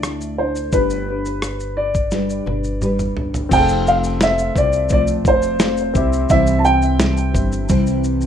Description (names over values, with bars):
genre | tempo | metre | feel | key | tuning
acoustic pop | 86 BPM | 4/4 | straight | unclear | A4 = 440 Hz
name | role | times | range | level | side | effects
dark upright piano | melody | 0.0-8.0 s | B4 to A5 | -19 LUFS | right 1 dB | plate reverb, tape echo
nylon-string guitar | accompaniment | 0.0-8.3 s | C3 to C5 | -22 LUFS | equal | double-tracked left and right, plate reverb
upright bass | bass | 0.0-8.3 s | F1 to D2 | -23 LUFS | equal | none
dusty soul sampler-style drum kit | drums | 0.0-8.3 s | crash cymbal, kick drum, rim click, shaker, snare drum, toms | -20 LUFS | equal | none
clear concert grand piano | accompaniment | 3.5-8.3 s | C4 to A5 | -27 LUFS | left 7 dB | plate reverb
room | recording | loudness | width
moderate studio reverb, RT60 0.6 s | rough home demo mix | -15 LUFS | side -9 dB against mid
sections
0.0-3.5 A section; 3.5-8.3 B section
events
drum fill 2.1-3.5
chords
0.0 Dsus2; 0.7 G; 3.5 F; 6.0 C